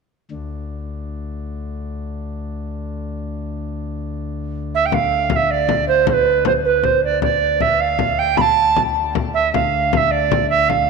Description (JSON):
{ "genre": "medieval dance", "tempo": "104 BPM (dotted quarters)", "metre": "6/8", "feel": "straight", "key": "D dorian", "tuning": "A4 = 440 Hz", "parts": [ { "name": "chamber organ, principal chorus", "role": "drone", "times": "0.3-10.9 s", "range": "D2", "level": "-26 LUFS", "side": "left 3 dB", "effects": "none" }, { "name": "tenor recorder", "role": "melody", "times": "4.7-10.9 s", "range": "B4 to B5", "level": "-15 LUFS", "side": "right 6 dB", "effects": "none" }, { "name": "frame drum", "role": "percussion", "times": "4.9-10.9 s", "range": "none", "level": "-23 LUFS", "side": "left 10 dB", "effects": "none" } ], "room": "wet plate reverb, RT60 3.5 s", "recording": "1960s-style stereo with parts hard left and right", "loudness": "-15 LUFS", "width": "side -4 dB against mid", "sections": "0.3-4.9 A section; 4.9-10.9 B section", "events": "none", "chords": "none", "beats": "| 0.31 0.88 | 1.46 2.04 | 2.61 3.19 | 3.77 4.34 | 4.92 5.50 | 6.08 6.65 | 7.23 7.80 | 8.38 8.96 | 9.54 10.11 | 10.69" }